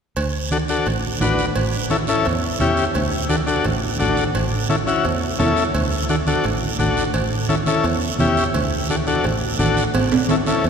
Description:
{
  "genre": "latin, cumbia",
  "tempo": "172 BPM",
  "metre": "4/4",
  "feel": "straight",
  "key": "D major",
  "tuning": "A4 = 440 Hz",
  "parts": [
    { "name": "fingered electric bass", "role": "bass", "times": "0.2-10.7 s", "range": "A1 to E2", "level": "-23 LUFS", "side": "right 1 dB", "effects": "none" },
    { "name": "cowbell and timbales", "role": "percussion", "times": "0.2-10.7 s", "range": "none", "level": "-27 LUFS", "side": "right 3 dB", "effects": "none" },
    { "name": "guiro", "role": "percussion", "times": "0.2-10.7 s", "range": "none", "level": "-31 LUFS", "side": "right 7 dB", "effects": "none" },
    { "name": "combo organ", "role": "accompaniment", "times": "0.5-10.7 s", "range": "C#4 to B4", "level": "-20 LUFS", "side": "left 2 dB", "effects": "none" },
    { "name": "congas", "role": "percussion", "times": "0.5-10.6 s", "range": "none", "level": "-27 LUFS", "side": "right 2 dB", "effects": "none" }
  ],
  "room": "wet cathedral reverb, RT60 6.0 s",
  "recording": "recorded in a church or concert hall",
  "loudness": "-17 LUFS",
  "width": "side -6 dB against mid",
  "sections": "0.2-10.7 A section",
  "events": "drum fill 9.9-10.7",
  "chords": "0.2 D; 1.6 A7; 3.0 D; 4.3 A; 5.7 D; 7.1 A7; 8.5 D; 9.9 A",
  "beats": "| 0.16 0.51 0.86 1.21 | 1.56 1.91 2.26 2.60 | 2.95 3.30 3.65 4.00 | 4.35 4.70 5.05 5.40 | 5.75 6.10 6.45 6.79 | 7.14 7.49 7.84 8.19 | 8.54 8.89 9.24 9.59 | 9.94 10.29 10.64"
}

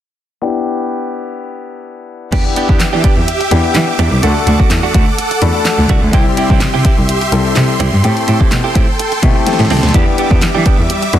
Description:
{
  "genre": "dance-pop",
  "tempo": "126 BPM",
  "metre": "4/4",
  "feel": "straight",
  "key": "E minor",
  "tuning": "A4 = 440 Hz",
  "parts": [
    { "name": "warm baby grand piano", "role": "accompaniment", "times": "0.4-11.2 s", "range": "G3 to B5", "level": "-19 LUFS", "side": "left 6 dB", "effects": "sidechain pumping, low-pass filter" },
    { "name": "supersaw chords", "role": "sustained chords", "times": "2.3-11.2 s", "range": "G3 to D6", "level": "-19 LUFS", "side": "right 1 dB", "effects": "sidechain pumping" },
    { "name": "direct-recorded clean electric guitar", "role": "riff", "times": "2.3-11.1 s", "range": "A3 to G4", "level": "-20 LUFS", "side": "right 7 dB", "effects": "wide subtle chorus" },
    { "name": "warm cello", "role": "bass", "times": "2.3-11.2 s", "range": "C2 to E3", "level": "-15 LUFS", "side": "equal", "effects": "sidechain pumping" },
    { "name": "deep house drum kit", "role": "drums", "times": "2.3-11.2 s", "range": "crash cymbal, handclaps, hi-hat, kick drum, snare drum", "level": "-14 LUFS", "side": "equal", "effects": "none" }
  ],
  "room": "little or no reverb",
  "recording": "dense, heavily limited modern master",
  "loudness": "-10 LUFS",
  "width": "side -11 dB against mid",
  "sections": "0.4-2.3 A section; 2.3-11.2 B section",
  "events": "filter sweep on grand piano 0.4-2.3; grand piano fill 5.2-6.1, 9.0-9.9; drum fill 9.5-9.9",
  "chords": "0.4 Em7; 4.2 D; 6.1 C; 8.0 Am7; 9.9 Em7",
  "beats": "| 0.42 0.90 1.37 1.85 | 2.33 2.80 3.28 3.75 | 4.23 4.71 5.18 5.66 | 6.13 6.61 7.09 7.56 | 8.04 8.52 8.99 9.47 | 9.94 10.42 10.90"
}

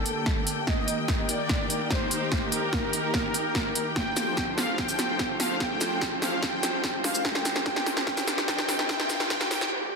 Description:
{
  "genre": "heavy wobble dubstep",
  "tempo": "146 BPM",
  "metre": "4/4",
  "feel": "half-time",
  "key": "unclear",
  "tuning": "A4 = 442 Hz",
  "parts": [
    { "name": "soft supersaw", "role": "melody", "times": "0.0-9.7 s", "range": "A4 to G5", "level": "-31 LUFS", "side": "equal", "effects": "phaser, tape echo" },
    { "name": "lush unison pad", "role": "sustained chords", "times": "0.0-10.0 s", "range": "D3 to A5", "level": "-35 LUFS", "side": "left 1 dB", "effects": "chorus, sidechain pumping" },
    { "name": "warm symphonic string section", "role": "texture", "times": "0.0-9.7 s", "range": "Bb3 to G5", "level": "-34 LUFS", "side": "left 1 dB", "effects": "sidechain pumping" },
    { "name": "big-room dance drum kit", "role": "drums", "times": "0.1-9.7 s", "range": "hi-hat, shaker, snare drum", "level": "-27 LUFS", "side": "equal", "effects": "none" },
    { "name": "electronic kick drum", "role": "drums", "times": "0.3-9.4 s", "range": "none", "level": "-32 LUFS", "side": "equal", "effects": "none" },
    { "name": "riser and swell", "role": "sound effects", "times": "6.2-10.0 s", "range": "none", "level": "-37 LUFS", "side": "equal", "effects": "none" }
  ],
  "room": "light reverb, digital ambience",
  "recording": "dense, heavily limited modern master, high-pass filter",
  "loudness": "-24 LUFS",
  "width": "side -4 dB against mid",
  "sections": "0.0-10.0 A section",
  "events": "build-up 0.0-10.0; drum fill 0.0-9.7; riser 6.2-9.7; break 9.7; swell 9.7",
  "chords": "0.0 Gmadd9; 0.7 Eb; 4.0 Fadd9; 7.2 Csus4",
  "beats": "0.26 | 0.67 1.08 1.50 1.91 | 2.32 2.73 3.14 3.55 | 3.96 4.37 4.78 5.19 | 5.60 6.01 6.43 6.84 | 7.25 7.66 8.07 8.48 | 8.89 9.30 9.71"
}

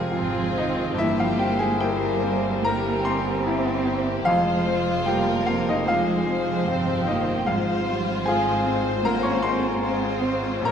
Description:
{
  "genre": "classical, romantic movement for piano and orchestra",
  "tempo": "75 BPM",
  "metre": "4/4",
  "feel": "rubato",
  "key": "F minor",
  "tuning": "A4 = 440 Hz",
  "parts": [
    { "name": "bright grand piano", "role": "melody", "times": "0.0-10.7 s", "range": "Bb1 to Db6", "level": "-24 LUFS", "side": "left 1 dB", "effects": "none" },
    { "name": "rich chamber violin section", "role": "melody", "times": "0.0-10.7 s", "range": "G4 to Db5", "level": "-32 LUFS", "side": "left 6 dB", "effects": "none" },
    { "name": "rich chamber violin section", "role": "second line", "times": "0.0-10.7 s", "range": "E4 to Bb4", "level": "-32 LUFS", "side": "left 2 dB", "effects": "none" },
    { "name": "rich chamber viola section", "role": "accompaniment", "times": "0.0-10.7 s", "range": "F3 to C4", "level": "-30 LUFS", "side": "right 2 dB", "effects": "none" },
    { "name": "mellow French horn section", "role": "sustained chords", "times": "0.0-10.7 s", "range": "Ab3 to G4", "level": "-32 LUFS", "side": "equal", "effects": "none" },
    { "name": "rich chamber double bass section", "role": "bass", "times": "0.0-10.7 s", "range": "F1 to Bb1", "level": "-33 LUFS", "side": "right 4 dB", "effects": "none" },
    { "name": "warm chamber cello section", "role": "bass", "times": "0.0-10.7 s", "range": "Eb3 to Db4", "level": "-30 LUFS", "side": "right 4 dB", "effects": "none" }
  ],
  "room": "wet concert hall reverb, RT60 1.8 s",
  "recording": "minimal, uncompressed stereo recording",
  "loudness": "-21 LUFS",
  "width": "side -8 dB against mid",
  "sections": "0.0-10.7 A section",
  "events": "none",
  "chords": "0.0 Fm; 1.0 C7/G; 4.3 Fm; 7.5 Fm/Ab",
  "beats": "0.15 | 0.97 1.80 2.64 3.45 | 4.25 5.07 5.87 6.67 | 7.47 8.26 9.03 9.83 | 10.63"
}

